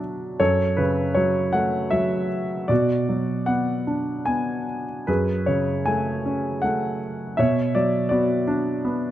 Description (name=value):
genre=classical, lyrical solo piano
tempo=77 BPM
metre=3/4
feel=uneven beats, rubato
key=F# minor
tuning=A4 = 440 Hz
part: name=clear concert grand piano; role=solo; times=0.0-9.1 s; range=F#2 to G#5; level=-21 LUFS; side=equal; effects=none
room=light reverb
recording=close, detailed microphones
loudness=-20 LUFS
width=side -13 dB against mid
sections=0.0-9.1 A section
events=none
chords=0.4 F#m; 2.7 Bm; 5.1 F#madd9; 7.4 Bmadd9